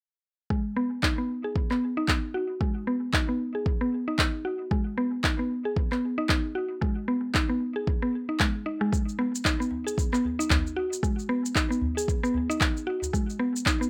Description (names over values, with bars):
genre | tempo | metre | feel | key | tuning
organic downtempo | 114 BPM | 4/4 | swing 58% on 16ths | G# minor pentatonic | A4 = 441 Hz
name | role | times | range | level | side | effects
mallet-like synth pluck | arpeggios | 0.5-13.9 s | G#3 to G#4 | -30 LUFS | equal | chorus, tape echo
electronic kick drum | drums | 0.5-13.8 s | none | -30 LUFS | equal | none
electronic handclaps and shaker | drums | 1.0-13.9 s | none | -30 LUFS | equal | none
udu | percussion | 9.7-13.1 s | none | -34 LUFS | equal | none
room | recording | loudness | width
light reverb | rough home demo mix | -28 LUFS | mono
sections
0.5-13.9 A section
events
filter sweep on synth pluck 0.5-13.9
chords
none